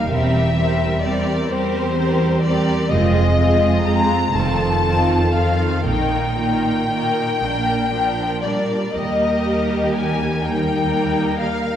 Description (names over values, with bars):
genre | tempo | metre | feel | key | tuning
classical, slow romantic movement for string orchestra | 38-43 BPM (dotted quarters) | 6/8 | rubato | Eb major | A4 = 439 Hz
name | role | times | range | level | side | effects
warm symphonic violin section | melody | 0.0-11.8 s | C5 to Bb5 | -22 LUFS | left 4 dB | none
rich symphonic violin section | second line | 0.0-11.8 s | D4 to Bb4 | -24 LUFS | left 1 dB | none
clear symphonic viola section | accompaniment | 0.0-11.8 s | Eb3 to C4 | -23 LUFS | right 2 dB | none
clear symphonic double bass section | bass | 0.1-9.9 s | E1 to Eb2 | -25 LUFS | right 2 dB | none
warm symphonic cello section | bass | 0.1-11.8 s | Eb2 to Bb2 | -22 LUFS | right 1 dB | none
room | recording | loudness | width
wet scoring stage reverb, RT60 1.6 s | heard from further back in the room | -16 LUFS | side -10 dB against mid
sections
0.0-11.8 A section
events
none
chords
0.1 C7/E; 2.9 Fm7; 4.3 F7; 5.9 Eb/Bb; 7.4 Bb; 8.9 Eb